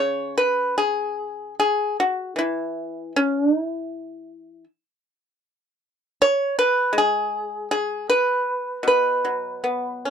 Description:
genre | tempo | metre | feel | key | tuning
chinese traditional, Chinese solo plucked strings | 72-81 BPM | 4/4 | rubato | E gong mode | A4 = 439 Hz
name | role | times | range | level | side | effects
pipa | solo | 0.0-10.1 s | B2 to C#5 | -20 LUFS | equal | none
room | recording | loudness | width
little or no reverb | dry, close 1970s-style studio recording | -20 LUFS | side -7 dB against mid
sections
0.0-10.1 A section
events
none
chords
none

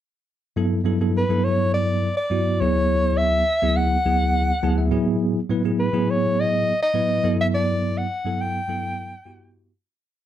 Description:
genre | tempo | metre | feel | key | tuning
jazz | 104 BPM | 4/4 | straight | G lydian | A4 = 437 Hz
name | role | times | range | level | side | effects
bell-like tine electric piano | accompaniment | 0.6-9.7 s | D2 to A5 | -21 LUFS | equal | fast stereo tremolo
breathy soprano saxophone | melody | 1.2-9.6 s | B4 to G5 | -22 LUFS | left 1 dB | slapback echo
room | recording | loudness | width
moderate studio ambience, RT60 0.5 s | dark, warm production | -19 LUFS | side -11 dB against mid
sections
0.6-9.9 A section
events
tine electric piano fill 4.3-5.2; fade-out 7.5-9.9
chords
0.6 Gmaj9; 2.6 Dmaj9; 4.9 Asus2; 7.2 Gmaj9

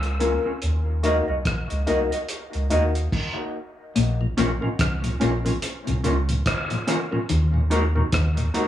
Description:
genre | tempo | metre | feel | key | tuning
dub reggae | 72 BPM | 4/4 | swing 59% on 16ths | Bb minor | A4 = 439 Hz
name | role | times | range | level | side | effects
dark baby grand piano | stabs | 0.0-2.9 s | Bb3 to Bb4 | -28 LUFS | left 4 dB | dub echo
soft dub sub bass | bass | 0.0-8.5 s | Bb1 to Eb2 | -23 LUFS | equal | none
cloth-damped thuddy drum kit | drums | 0.0-8.7 s | crash cymbal, hi-hat, kick drum, rim click | -27 LUFS | equal | none
mellow electric guitar | accompaniment | 0.2-8.7 s | Db4 to Eb5 | -27 LUFS | right 1 dB | dub echo
mellow electric guitar | riff | 4.0-8.4 s | Bb2 to Eb3 | -26 LUFS | left 3 dB | lush chorus, dub echo
mellow tonewheel organ | accompaniment | 4.2-8.6 s | Eb2 to Gb4 | -29 LUFS | left 2 dB | slow rotary speaker, dub echo
room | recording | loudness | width
light reverb, small room ambience | small room reverb | -21 LUFS | side -12 dB against mid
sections
0.0-4.0 A section; 4.0-8.7 B section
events
stop 3.1-4.0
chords
0.0 Bbm; 0.6 Ebm; 4.0 Bbm; 7.3 Ebm

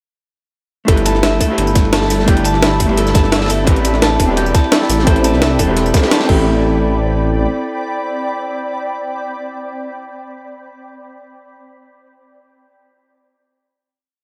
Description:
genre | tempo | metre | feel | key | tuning
liquid drum and bass | 172 BPM | 4/4 | straight | A minor | A4 = 439 Hz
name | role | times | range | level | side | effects
vintage hollow-body jazz guitar | accompaniment | 0.8-10.1 s | A3 to D5 | -22 LUFS | equal | vintage 12-bit sampler grit, dub echo
shimmering ambient pad | sustained chords | 1.9-10.0 s | C4 to B5 | -26 LUFS | equal | chorus, built-in reverb, sidechain pumping
concert harp | arpeggios | 0.9-8.5 s | E4 to A5 | -23 LUFS | equal | dub echo
dark detuned saw bass | bass | 0.9-7.5 s | E1 to C2 | -19 LUFS | equal | none
crunchy breakbeat drum kit | drums | 0.9-6.3 s | ride cymbal, snare drum | -26 LUFS | equal | high-pass filter on cymbals, high-pass filter on snare, high-pass filter on room
electronic kick drum | drums | 0.9-6.4 s | none | -16 LUFS | equal | none
jungle sampler-style drum kit | drums | 0.9-6.4 s | crash cymbal, hi-hat, snare drum, tambourine | -21 LUFS | equal | none
room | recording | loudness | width
light reverb | none | -15 LUFS | mono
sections
0.9-6.5 drop; 6.5-9.3 final hit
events
drop 0.9-6.5; band accent 6.1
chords
0.9 G6; 3.7 Am11

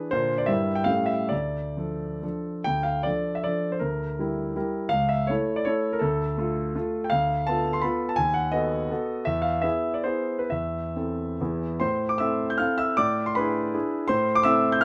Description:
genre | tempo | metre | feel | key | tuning
classical, romantic triple-time dance for piano with dotted rhythms | 125-179 BPM | 3/4 | rubato | D minor, A minor from 7.1 s | A4 = 440 Hz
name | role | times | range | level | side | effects
warm grand piano | solo | 0.0-14.8 s | C#2 to G6 | -26 LUFS | equal | none
room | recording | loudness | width
light reverb | close, detailed microphones | -26 LUFS | mono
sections
0.0-2.7 A section; 2.7-11.8 B section; 11.8-14.8 A section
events
none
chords
0.1 Bb; 0.5 Edim/G; 0.9 A7; 1.3 Dm; 3.8 Em7b5/D; 4.9 A/C#; 6.0 Dm; 7.1 Bm7b5/D; 8.2 B7/D#; 9.3 E; 10.5 Am/E; 11.4 E; 11.8 Am; 13.0 E7/A; 14.1 Am

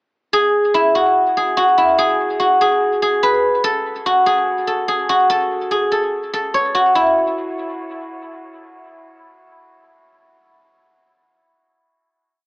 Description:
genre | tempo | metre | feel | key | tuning
hip hop, trap | 145 BPM | 4/4 | half-time | unclear | A4 = 440 Hz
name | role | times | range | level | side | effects
guzheng | solo | 0.3-9.6 s | E4 to C#5 | -14 LUFS | equal | dub echo
room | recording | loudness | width
moderate spring reverb, RT60 1.7 s | echo-heavy mix, AM radio sound | -14 LUFS | side -33 dB against mid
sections
0.3-7.0 breakdown; 7.0-10.3 final note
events
none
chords
none

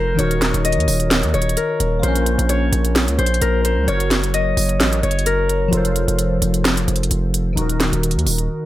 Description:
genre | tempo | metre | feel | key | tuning
hip hop, trap | 130 BPM | 4/4 | half-time | Bb harmonic minor | A4 = 442 Hz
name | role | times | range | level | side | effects
Celtic harp | melody | 0.0-7.4 s | Bb4 to Eb5 | -21 LUFS | left 2 dB | digital delay
glassy digital keys | accompaniment | 0.0-8.7 s | Eb3 to Db5 | -23 LUFS | left 1 dB | chorus
hard-hitting 808-style bass | bass | 0.0-8.5 s | Eb1 to Eb2 | -19 LUFS | equal | none
trap drum kit | drums | 0.2-8.5 s | handclaps, hi-hat, snare drum | -20 LUFS | right 1 dB | none
room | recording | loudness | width
digital ambience | none | -16 LUFS | side -15 dB against mid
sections
0.0-8.7 A section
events
break 8.5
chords
0.2 Ebm; 2.0 Bbmadd9; 3.9 Gb; 5.7 F; 7.6 Ebm

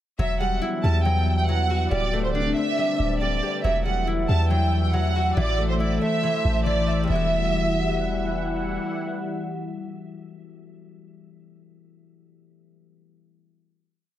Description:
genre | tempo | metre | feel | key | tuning
hip hop, trap | 139 BPM | 4/4 | half-time | E minor | A4 = 440 Hz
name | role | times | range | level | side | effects
warm studio violin section | melody | 0.2-8.3 s | C5 to A5 | -26 LUFS | right 3 dB | dub echo
concert harp | accompaniment | 0.2-11.4 s | E3 to E5 | -28 LUFS | left 4 dB | none
sweeping resonant pad | sustained chords | 0.2-11.3 s | D3 to F#5 | -30 LUFS | equal | chorus
warm 808-style bass | bass | 0.2-8.8 s | D1 to E2 | -24 LUFS | equal | none
room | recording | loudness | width
light reverb, small room ambience | echo-heavy mix | -21 LUFS | side -12 dB against mid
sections
0.2-7.1 breakdown; 7.1-10.5 final chord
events
none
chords
0.2 Emadd9; 1.9 D7sus4; 3.6 Emadd9; 5.4 Am; 7.1 Emadd9

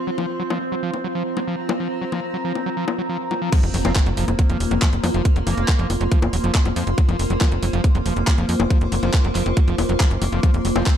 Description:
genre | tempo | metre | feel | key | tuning
psychedelic trance | 139 BPM | 4/4 | straight | unclear | A4 = 439 Hz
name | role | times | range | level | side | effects
evolving wavetable pad | sustained chords | 0.0-11.0 s | Bb3 to C4 | -27 LUFS | equal | phaser, built-in reverb, sidechain pumping
deep dark ambient pad | texture | 0.0-11.0 s | F4 to Eb6 | -28 LUFS | right 1 dB | chorus, built-in reverb, sidechain pumping
screaming distorted acid line | riff | 0.1-10.8 s | F3 to Gb3 | -28 LUFS | moving between left 7 dB and right 6 dB | distortion, chorus, auto-pan, sidechain pumping, tape echo
garage drum kit | drums | 0.2-10.9 s | bongos, crash cymbal, handclaps, hi-hat | -26 LUFS | left 3 dB | overdrive, studio reverb
electronic kick drum | drums | 3.5-10.9 s | none | -17 LUFS | equal | overdrive, studio reverb
impact | sound effects | 3.5-5.3 s | none | -30 LUFS | equal | none
tight sequencer bass | bass | 3.6-10.8 s | Eb1 to F2 | -22 LUFS | equal | none
metallic wobble bass | second line | 3.8-5.9, 10.8-10.9 s | Bb3 to C4 | -33 LUFS | right 5 dB | analog chorus, cassette tape, sidechain pumping, high-pass filter, tape echo
room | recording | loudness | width
light reverb, digital ambience | dark, warm production | -18 LUFS | side -10 dB against mid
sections
0.0-3.5 A section; 3.5-11.0 B section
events
drop 3.5-11.0; impact 3.5-5.3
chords
0.0 F5

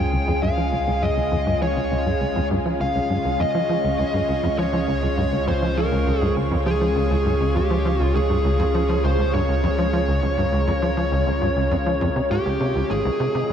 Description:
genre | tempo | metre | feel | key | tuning
ambient, sequencer-driven space music | 101 BPM | 4/4 | straight | Db lydian | A4 = 440 Hz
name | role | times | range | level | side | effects
fuzz lead guitar | melody | 0.0-13.5 s | G4 to G5 | -24 LUFS | equal | distortion, analog delay
lush unison pad | sustained chords | 0.0-13.5 s | C3 to Db5 | -25 LUFS | equal | chorus
tight sequencer bass | riff | 0.0-13.5 s | Ab1 to F3 | -24 LUFS | equal | lush chorus, analog delay
warm sub bass | bass | 0.0-13.5 s | Db2 | -25 LUFS | equal | none
bubbling stepped-filter texture | texture | 0.0-13.5 s | Ab3 to C6 | -43 LUFS | left 4 dB | none
room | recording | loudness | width
wet huge ambient reverb, RT60 8.1 s | dark, warm production | -19 LUFS | side -8 dB against mid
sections
0.0-13.5 A section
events
filter sweep on analog synth bass 0.0-13.5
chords
0.0 Db; 12.9 Ab

